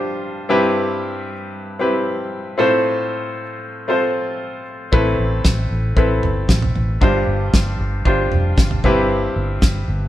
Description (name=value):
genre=piano-driven pop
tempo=115 BPM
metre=4/4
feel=straight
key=C major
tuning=A4 = 439 Hz
part: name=bright concert grand piano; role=accompaniment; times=0.0-10.1 s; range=G2 to C5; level=-19 LUFS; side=left 1 dB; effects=none
part: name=vintage muted fingered electric bass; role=bass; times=4.9-10.1 s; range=F1 to A1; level=-20 LUFS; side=equal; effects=none
part: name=damped 70s drum kit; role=drums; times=4.9-9.7 s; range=kick drum, snare drum, toms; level=-17 LUFS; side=equal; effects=none
room=moderate stone room reverb, RT60 1.1 s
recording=band playing live in one room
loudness=-16 LUFS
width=side -13 dB against mid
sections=0.0-10.1 A section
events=none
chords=0.5 Cmaj7/G; 2.6 F/A; 4.9 Amadd9; 7.0 G7sus4; 8.8 Cmaj7/G